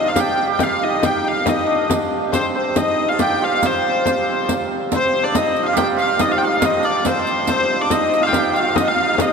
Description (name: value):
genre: medieval dance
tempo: 140 BPM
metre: 3/4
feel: straight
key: C dorian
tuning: A4 = 441 Hz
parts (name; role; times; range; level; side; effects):
- rich hurdy-gurdy; melody; 0.0-9.3 s; C5 to G5; -18 LUFS; left 2 dB; none
- hammered dulcimer; second line; 0.0-9.3 s; A3 to G4; -22 LUFS; right 5 dB; none
- pedal harmonium; drone; 0.0-9.3 s; C3 to G3; -29 LUFS; right 1 dB; none
- frame drum; percussion; 0.2-9.3 s; none; -24 LUFS; left 4 dB; none
- riq; percussion; 0.2-9.3 s; none; -26 LUFS; right 6 dB; none
room: wet cathedral reverb, RT60 6.0 s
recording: none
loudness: -16 LUFS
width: side -5 dB against mid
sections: 0.0-4.9 A section; 4.9-9.3 B section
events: none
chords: none